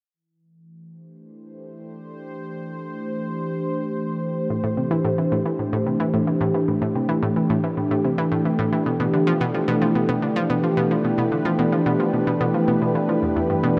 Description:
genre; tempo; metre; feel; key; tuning
ambient, sequencer-driven space music; 110 BPM; 4/4; straight; A minor; A4 = 439 Hz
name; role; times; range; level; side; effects
sweeping resonant pad; sustained chords; 0.1-13.8 s; E3 to C5; -24 LUFS; equal; chorus
analog pluck; riff; 4.5-13.8 s; E2 to F3; -26 LUFS; equal; chorus, analog delay
room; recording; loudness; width
wet huge ambient reverb, RT60 9.0 s; none; -22 LUFS; mono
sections
0.1-4.5 A section; 4.5-13.8 B section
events
fade-in on analog synth pad 0.1-4.5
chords
0.1 Am; 8.9 Bdim; 13.2 Em

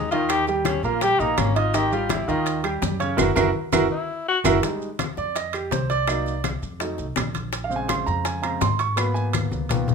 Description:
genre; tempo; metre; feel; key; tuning
Afro-Cuban jazz; 166 BPM; 4/4; straight; F minor; A4 = 440 Hz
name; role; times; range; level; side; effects
warm tenor saxophone; second line; 0.0-4.4 s; Bb3 to G4; -25 LUFS; left 5 dB; none
warm baby grand piano; accompaniment; 0.0-9.9 s; Db3 to Eb6; -24 LUFS; right 4 dB; none
upright bass; bass; 0.0-9.9 s; Gb1 to Ab2; -28 LUFS; equal; none
bongos; percussion; 0.1-9.9 s; none; -31 LUFS; left 10 dB; none
congas; percussion; 0.1-9.9 s; none; -29 LUFS; left 7 dB; none
maracas; percussion; 0.1-9.9 s; none; -36 LUFS; right 6 dB; none
timbales; percussion; 0.1-9.9 s; none; -31 LUFS; right 9 dB; none
claves; percussion; 0.3-9.5 s; none; -32 LUFS; right 4 dB; none
room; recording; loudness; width
moderate large studio reverb, RT60 0.8 s; minimal, uncompressed stereo recording; -20 LUFS; side -5 dB against mid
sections
0.0-4.6 A section; 4.6-9.9 A section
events
tenor saxophone solo 0.0-4.6; band accent 3.2-4.6; drum fill 3.7-4.6, 9.3-9.9; grand piano solo 4.6-9.9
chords
0.3 Eb; 1.7 Ab5; 3.2 Gb7; 4.6 Fm9; 6.1 Cm7b5; 6.8 F7b9; 7.5 Bbm7; 9.0 Abm7

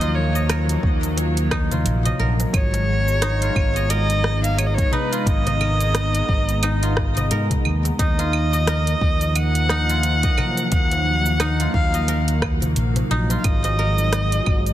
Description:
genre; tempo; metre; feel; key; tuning
organic downtempo; 88 BPM; 4/4; swing 58% on 16ths; Eb minor; A4 = 436 Hz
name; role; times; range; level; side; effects
clear kamancheh; melody; 0.0-14.7 s; Cb5 to Gb5; -25 LUFS; equal; digital delay
warm analog pad; sustained chords; 0.0-14.7 s; Eb3 to Bb5; -27 LUFS; equal; chorus, sidechain pumping
guzheng; arpeggios; 0.0-14.7 s; Eb4 to Eb5; -29 LUFS; equal; ping-pong delay
fretless electric bass; bass; 0.0-14.7 s; Ab1 to Ab2; -21 LUFS; equal; sidechain pumping
afro-pop drum kit; drums; 0.0-14.7 s; cabasa, claves, hi-hat, rim click; -27 LUFS; right 2 dB; soft clipping on snare
darbuka; percussion; 0.0-13.8 s; none; -30 LUFS; left 2 dB; none
electronic kick drum; drums; 0.8-14.6 s; none; -21 LUFS; equal; none
room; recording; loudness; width
light reverb; dense, heavily limited modern master; -17 LUFS; side -13 dB against mid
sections
0.0-14.7 A section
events
none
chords
0.0 Ebmadd9; 2.5 Abmadd9; 8.0 Ebmadd9; 13.4 Absus2

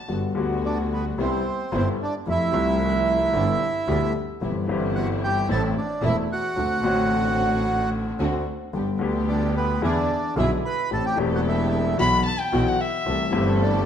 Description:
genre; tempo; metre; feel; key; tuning
tango; 111 BPM; 4/4; rubato; G major; A4 = 441 Hz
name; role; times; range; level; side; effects
dark violin; second line; 0.0-0.1, 12.0-13.5 s; E5 to B5; -25 LUFS; left 2 dB; none
warm grand piano; accompaniment; 0.1-13.9 s; E1 to A4; -25 LUFS; left 3 dB; none
dark studio string section; stabs; 0.1-13.9 s; F3 to A4; -33 LUFS; right 1 dB; none
clear double bass; bass; 0.1-13.9 s; E1 to F2; -27 LUFS; right 2 dB; none
bandoneon; melody; 0.7-13.9 s; B3 to B5; -25 LUFS; right 3 dB; none
room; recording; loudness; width
wet large studio reverb, RT60 1.5 s; none; -21 LUFS; side -8 dB against mid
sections
0.1-13.9 A section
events
none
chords
0.1 Gmaj7; 1.2 Cmaj7; 2.3 Fmaj7; 3.3 G; 4.4 Cmaj7/G; 5.5 Am; 6.6 D7; 8.7 G; 9.8 E7; 10.9 Am7; 12.0 Esus2/B; 13.1 C6

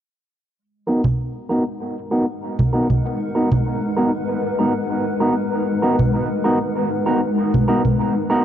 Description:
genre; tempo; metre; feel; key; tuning
ambient dub; 97 BPM; 4/4; straight; G# minor; A4 = 440 Hz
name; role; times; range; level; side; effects
granular cloud pad; sustained chords; 1.7-8.4 s; G#3 to F#5; -22 LUFS; left 2 dB; built-in reverb
electric guitar at the edge of break-up; stabs; 0.9-8.4 s; B3 to A#4; -21 LUFS; right 1 dB; low-pass filter, dub echo
congas; drums; 1.0-8.0 s; none; -19 LUFS; right 1 dB; none
room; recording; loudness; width
moderate huge ambient reverb, RT60 3.9 s; dark, warm production; -17 LUFS; side -10 dB against mid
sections
0.6-8.4 A section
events
fade-in on ambient pad 0.6-8.4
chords
0.6 G#m7

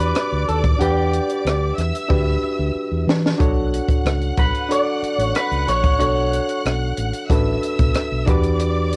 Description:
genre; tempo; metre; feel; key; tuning
lush 1970s-style soul; 92 BPM; 4/4; straight; B minor; A4 = 440 Hz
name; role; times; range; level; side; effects
electric guitar through a small old amp; melody; 0.0-6.6 s; G4 to D5; -24 LUFS; equal; spring reverb
bright studio string section; second line; 0.0-9.0 s; D5 to F#6; -30 LUFS; equal; cassette tape
bright reed electric piano; accompaniment; 0.0-9.0 s; D4 to F#5; -26 LUFS; equal; cassette tape
fingered electric bass; bass; 0.0-8.9 s; A1 to E3; -24 LUFS; equal; transformer saturation
compact cocktail drum kit; drums; 0.1-9.0 s; hi-hat, kick drum, rim click, snare drum; -22 LUFS; equal; cassette tape
room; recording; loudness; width
light reverb; home recording on cassette; -20 LUFS; mono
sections
0.0-9.0 A section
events
drum fill 2.1-3.4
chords
0.0 Em9; 3.4 Bm9; 8.3 Em9

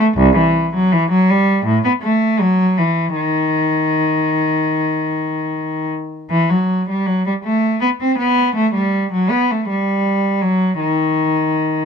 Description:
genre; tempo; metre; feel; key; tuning
classical, baroque-style suite movement for unaccompanied cello; 79 BPM; 4/4; uneven beats, rubato; unclear; A4 = 440 Hz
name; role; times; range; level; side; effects
rich cello; solo; 0.0-11.8 s; C2 to C4; -14 LUFS; equal; none
room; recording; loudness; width
little or no reverb; close, detailed microphones; -14 LUFS; side -6 dB against mid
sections
0.0-6.3 A section; 6.3-11.8 B section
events
none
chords
none

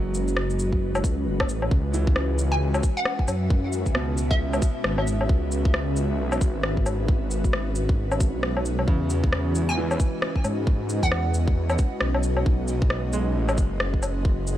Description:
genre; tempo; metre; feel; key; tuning
future garage; 134 BPM; 4/4; swing 60% on 16ths; C# minor; A4 = 441 Hz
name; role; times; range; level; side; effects
bright upright piano; accompaniment; 0.0-14.6 s; B2 to G#3; -34 LUFS; right 3 dB; sidechain pumping, tape echo
ethereal airy pad; sustained chords; 0.0-14.6 s; G#3 to E5; -31 LUFS; left 1 dB; ensemble chorus, built-in reverb, sidechain pumping
swelling detuned saw bass; bass; 0.0-14.6 s; F#1 to G#2; -25 LUFS; equal; tube saturation, sidechain pumping
electronic shaker, rim click and woodblock; drums; 0.1-14.6 s; none; -28 LUFS; left 1 dB; studio reverb
electronic kick drum; drums; 0.7-14.4 s; none; -22 LUFS; equal; studio reverb
hollow square pluck; melody; 2.5-4.6, 9.7-11.5 s; E5 to G#5; -32 LUFS; right 2 dB; lush chorus, tape echo
room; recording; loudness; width
little or no reverb; none; -21 LUFS; side -12 dB against mid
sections
0.0-1.7 A section; 1.7-14.6 B section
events
none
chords
0.0 B; 1.7 C#m; 8.9 Eadd9; 12.5 B

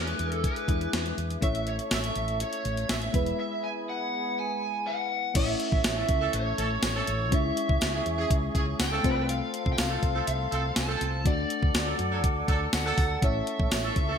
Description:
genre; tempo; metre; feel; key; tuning
1980s-style pop; 122 BPM; 4/4; straight; A major; A4 = 440 Hz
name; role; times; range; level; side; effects
lead guitar through a small cranked amp; melody; 0.0-14.2 s; B4 to A5; -32 LUFS; equal; overdrive, lush chorus, digital delay
mellow FM electric piano; accompaniment; 0.0-14.2 s; G#3 to D5; -34 LUFS; left 3 dB; chorus, phaser
mellow flute section; sustained chords; 0.0-14.2 s; G#4 to D6; -36 LUFS; right 1 dB; none
woody fretless electric bass; bass; 0.0-14.1 s; E1 to F#2; -32 LUFS; equal; none
clean 12-bit digital drum machine; drums; 0.1-14.1 s; crash cymbal, hi-hat, kick drum, snare drum, tambourine; -28 LUFS; equal; gated reverb
tambourine; percussion; 1.9-13.8 s; none; -46 LUFS; right 9 dB; none
warm horn section; stabs; 6.0-14.2 s; E3 to A4; -34 LUFS; right 4 dB; none
room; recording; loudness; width
moderate lush hall reverb, RT60 1.7 s; bright 1980s-style digital production; -25 LUFS; side -7 dB against mid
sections
0.0-5.4 A section; 5.4-14.2 B section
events
break 3.4-5.4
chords
0.0 E7; 1.4 A; 3.1 E; 5.4 A; 7.3 C#m; 9.0 F/C; 11.3 D; 13.2 A

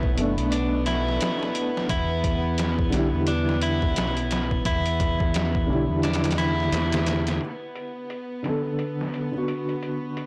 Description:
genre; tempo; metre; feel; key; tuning
trip hop; 87 BPM; 4/4; swing 59% on 16ths; E minor; A4 = 440 Hz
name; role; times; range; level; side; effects
felt-muted upright piano; accompaniment; 0.0-10.3 s; B2 to A4; -30 LUFS; equal; tremolo, tape echo
rich chamber string section; sustained chords; 0.0-10.3 s; B3; -35 LUFS; equal; vintage 12-bit sampler grit
clean electric guitar; arpeggios; 0.0-7.4 s; D4 to E4; -31 LUFS; equal; digital delay
growling fingered electric bass; bass; 0.0-7.4 s; F#1 to E2; -29 LUFS; equal; overdrive, tube saturation
trip hop sampler-style drum kit; drums; 0.0-10.3 s; hi-hat, kick drum, snare drum; -30 LUFS; equal; overdrive, low-pass filter on hats, low-pass filter on snare, low-pass filter on kick, low-pass filter on room
room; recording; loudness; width
light reverb, digital ambience; blown-out, overdriven recording, overdrive; -25 LUFS; mono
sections
0.0-7.4 A section; 7.4-10.3 B section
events
none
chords
0.0 Bm7; 1.9 Em7; 7.4 Bm7

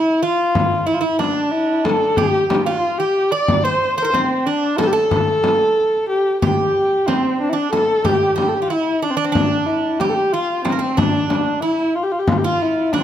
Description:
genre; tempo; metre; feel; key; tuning
Turkish makam ensemble; 184 BPM (eighths); 9/8; straight; D makam ussak; A4 = 439 Hz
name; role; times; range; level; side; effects
dark kamancheh; melody; 0.0-13.0 s; C4 to D5; -17 LUFS; left 1 dB; none
Greek bouzouki; second line; 0.0-13.0 s; Bb3 to D5; -23 LUFS; right 8 dB; none
frame drum; percussion; 0.6-13.0 s; none; -21 LUFS; left 2 dB; none
room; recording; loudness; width
light reverb; close, detailed microphones; -15 LUFS; side -10 dB against mid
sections
0.0-13.0 A section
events
none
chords
none

